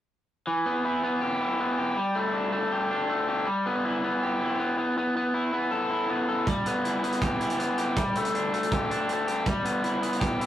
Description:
indie rock; 160 BPM; 4/4; straight; A4 = 440 Hz
crunchy overdriven guitar; riff; 0.5-10.5 s; E3 to A4; -25 LUFS; left 1 dB
loose indie drum kit; drums; 6.5-10.5 s; hi-hat, kick drum; -31 LUFS; right 2 dB
moderate stone room reverb, RT60 0.9 s; rough rehearsal-room recording; -24 LUFS; side -11 dB against mid
0.5-10.5 A section
0.5 Em; 2.0 Gsus2; 3.5 Em; 4.8 Asus2; 6.5 Em; 8.0 Gsus2; 9.5 Em

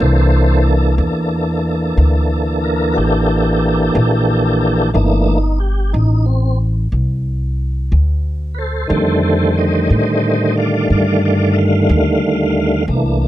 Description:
slow blues; 60 BPM (dotted quarters); 12/8; straight; A4 = 440 Hz
tonewheel organ; sustained chords; 0.0-13.3 s; D3 to F5; -15 LUFS; right 1 dB; slow rotary speaker, overdrive, chorus vibrato, plate reverb
upright bass; bass; 0.0-13.3 s; G1 to A2; -15 LUFS; equal
moderate studio reverb, RT60 0.6 s; dark, warm production; -13 LUFS; side -14 dB against mid
0.0-13.3 A section
tonewheel organ solo 0.0-13.3
0.0 C13; 8.9 F13

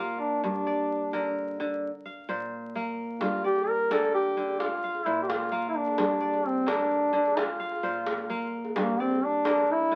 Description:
west african traditional, West African string and xylophone music; 86 BPM (dotted quarters); 12/8; straight; G minor; A4 = 438 Hz
mellow duduk; melody; 0.0-10.0 s; Bb3 to Bb4; -29 LUFS; equal
kora; arpeggios; 0.0-10.0 s; G2 to F5; -34 LUFS; equal
djembe; percussion; 3.2-9.7 s; -37 LUFS; equal
wet small room reverb, RT60 0.6 s; very old 78 rpm record, vinyl crackle; -28 LUFS; mono
0.0-10.0 A section
0.4 Gm; 1.8 Bb5; 3.2 Gm; 4.6 Bb5; 6.0 Gm; 7.4 Bb5; 8.8 Gm

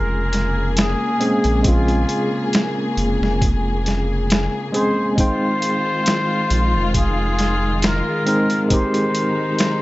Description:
trip hop; 68 BPM; 4/4; swing 53% on 16ths; Bb dorian; A4 = 440 Hz
trumpet with plunger mute; melody; 0.0-9.8 s; F4 to C5; -24 LUFS; equal; tape echo
tine electric piano; accompaniment; 0.0-9.8 s; Ab3 to G5; -22 LUFS; equal; overdrive, tremolo
dark studio string section; sustained chords; 0.0-9.8 s; Db3 to Ab4; -23 LUFS; left 2 dB
round analog bass; bass; 0.0-8.0 s; F1 to Bb1; -20 LUFS; equal
boom bap sampler-style drum kit; drums; 0.3-9.8 s; hi-hat, kick drum, snare drum; -20 LUFS; equal; overdrive, small room ambience
light reverb; nothing above 7.8 kHz; -16 LUFS; side -18 dB against mid
0.0-9.8 A section
0.0 Bbm7; 5.2 Fm7

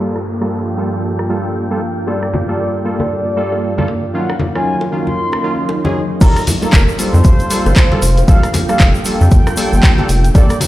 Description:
deep house; 116 BPM; 4/4; swing 59% on 16ths; G minor; A4 = 436 Hz
dark analog pad; sustained chords; 0.0-10.7 s; G2 to Bb4; -25 LUFS; equal; chorus, sidechain pumping
warm analog keys; stabs; 0.0-10.5 s; Eb3 to A4; -20 LUFS; right 1 dB; chorus, sidechain pumping, tape echo
downlifter; sound effects; 0.0-2.1 s; -37 LUFS; right 1 dB
granular cloud pad; texture; 0.0-10.7 s; Gb3 to G5; -24 LUFS; equal; built-in reverb, sidechain pumping
punchy analog drum machine; drums; 0.2-10.7 s; crash cymbal, handclaps, hi-hat, rim click; -21 LUFS; equal; low-pass filter on hats, low-pass filter on snare, low-pass filter on cymbals
mellow horn-like synth lead; melody; 2.1-10.6 s; Bb4 to C6; -21 LUFS; equal; chorus, phaser, tape echo
bongos and congas; percussion; 2.1-10.7 s; -21 LUFS; left 1 dB
rubbery square bass; bass; 6.2-10.5 s; F1 to F2; -12 LUFS; equal; sidechain pumping
electronic kick drum; drums; 6.2-10.5 s; -10 LUFS; equal; overdrive
egg shaker; percussion; 6.2-10.7 s; -28 LUFS; right 2 dB
light reverb, digital ambience; played on a big sound system in a bare room, stone room reverb, low-pass filter; -12 LUFS; side -15 dB against mid
0.0-6.2 A section; 6.2-10.7 B section
filter sweep on drum 0.0-6.2; filter sweep 0.0-6.2; drop 6.2-10.7
0.0 Gm9; 4.1 Ebm9; 6.2 Gm9

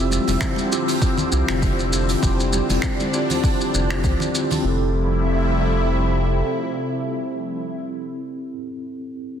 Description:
sunset chillout; 99 BPM; 4/4; swing 56% on 16ths; F major; A4 = 441 Hz
mellow tine electric piano; accompaniment; 0.0-9.4 s; C4 to A4; -25 LUFS; equal; medium stereo tremolo, auto-pan, low-pass filter, tape echo
lush unison pad; sustained chords; 0.0-7.8 s; C3 to E5; -24 LUFS; equal; chorus, phaser
round analog bass; bass; 0.0-6.4 s; F1 to C2; -22 LUFS; equal
vintage brush drum kit; drums; 0.1-4.6 s; finger snaps, hi-hat, shaker; -27 LUFS; equal
congas; percussion; 0.1-4.6 s; -29 LUFS; right 2 dB
electronic kick drum; drums; 0.4-4.2 s; -22 LUFS; equal
moderate lush hall reverb, RT60 2.0 s; dense, heavily limited modern master; -19 LUFS; side -8 dB against mid
0.0-4.6 A section; 4.6-7.1 B section
filter sweep on tine electric piano 0.0-4.6
0.0 Dm11/F; 4.6 Fmaj9

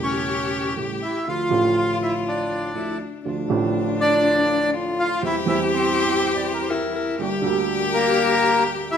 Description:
tango; 122 BPM; 4/4; rubato; D minor; A4 = 440 Hz
bandoneon; melody; 0.0-9.0 s; Bb3 to F5; -22 LUFS; left 1 dB
clear cello; second line; 0.0-9.0 s; D4 to G4; -24 LUFS; left 4 dB
dark upright piano; accompaniment; 0.0-9.0 s; E1 to G4; -25 LUFS; right 4 dB
dark studio string section; stabs; 3.3-9.0 s; E3 to G4; -32 LUFS; right 2 dB
clear clarinet; second line; 6.7-7.8 s; G4 to Bb4; -29 LUFS; left 3 dB
wet large studio reverb, RT60 1.1 s; minimal, uncompressed stereo recording; -19 LUFS; side -8 dB against mid
0.0-3.3 A section; 3.3-9.0 A section
0.0 A7; 1.3 Dm; 5.2 C/E; 7.2 Gm

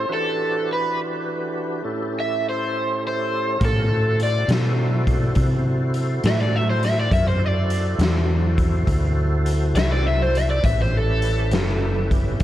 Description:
slow blues; 68 BPM (dotted quarters); 12/8; straight; A4 = 440 Hz
overdriven semi-hollow guitar; melody; 0.0-12.1 s; A4 to E5; -25 LUFS; right 1 dB; lush chorus
tonewheel organ; sustained chords; 0.0-12.4 s; A2 to C#5; -28 LUFS; equal; slow rotary speaker, overdrive, chorus vibrato
hollow-body short-scale fingered electric bass; bass; 3.6-12.4 s; F#1 to C3; -20 LUFS; equal
raw garage drum kit; drums; 3.6-12.4 s; hi-hat, kick drum, snare drum; -24 LUFS; equal
moderate cathedral reverb, RT60 4.7 s; dreamy mix soaked in reverb; -18 LUFS; side -13 dB against mid
0.0-12.4 A section
0.1 Em7; 1.9 A7; 3.6 D9; 10.6 A9

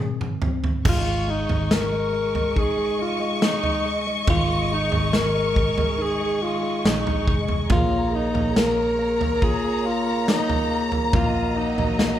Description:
pop ballad; 70 BPM; 4/4; straight; A4 = 440 Hz
mellow alto saxophone; melody; 0.0-12.2 s; Eb4 to Bb4; -26 LUFS; equal
tine electric piano; accompaniment; 0.0-12.2 s; Ab2 to F4; -27 LUFS; equal; slow stereo tremolo
natural country drum kit; drums; 0.2-12.2 s; crash cymbal, kick drum, snare drum, toms; -23 LUFS; equal
dark studio string section; sustained chords; 0.8-12.2 s; Gb3 to Db6; -27 LUFS; left 1 dB
vintage muted picked electric bass; bass; 0.9-12.2 s; F1 to Bb1; -28 LUFS; equal
moderate large studio reverb, RT60 1.1 s; band playing live in one room; -20 LUFS; side -11 dB against mid
0.9-12.2 A section
drum fill 0.0-0.9
0.0 Ab; 0.9 Absus4; 7.7 Bbm7; 11.1 Ebm/Bb

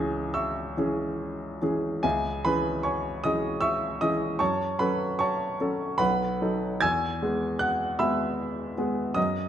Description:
classical, romantic character piece for solo piano; 76 BPM; 3/4; uneven beats, rubato; C# minor; A4 = 443 Hz
clear grand piano; solo; 0.0-9.5 s; B1 to G#6; -25 LUFS; equal
wet recital hall reverb, RT60 1.4 s; -25 LUFS; side -10 dB against mid
0.0-2.0 A section; 2.0-9.5 B section
0.0 C#m; 4.4 F#m; 6.0 B7; 6.8 E

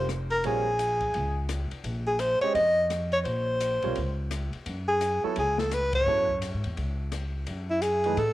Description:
modal jazz; 171 BPM; 4/4; swing 62% on 8ths; A4 = 438 Hz
clear alto saxophone; melody; 0.0-8.3 s; Fb4 to Eb5; -25 LUFS; equal
warm upright piano; accompaniment; 0.0-8.2 s; Fb3 to Eb5; -33 LUFS; right 10 dB
upright bass; bass; 0.0-8.3 s; F1 to A2; -32 LUFS; equal; tube saturation
open jazz drum kit; drums; 0.1-8.3 s; hi-hat, kick drum, ride cymbal, rim click, snare drum; -38 LUFS; left 4 dB
moderate spring reverb, RT60 1.6 s, small room ambience; 1960s-style stereo; -25 LUFS; side -15 dB against mid
0.0-8.3 A section
band accent 5.9
0.0 Bbm9; 4.7 Gbm9

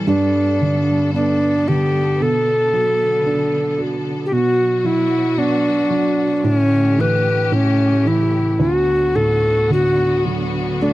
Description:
celtic folk, Celtic slow air; 56 BPM; 4/4; rubato; A4 = 437 Hz
felt-muted upright piano; accompaniment; 0.0-10.9 s; D2 to F#4; -20 LUFS; right 1 dB
rich studio string section; sustained chords; 0.0-10.9 s; B2 to A4; -26 LUFS; left 2 dB
tenor recorder; melody; 0.1-10.9 s; C#4 to B4; -16 LUFS; equal
light reverb; dry, close 1970s-style studio recording; -15 LUFS; side -16 dB against mid
0.0-10.9 A section
0.1 Gadd9; 2.2 Bm7; 4.3 Bmadd11; 6.4 A7sus4; 7.5 A7; 8.6 D6

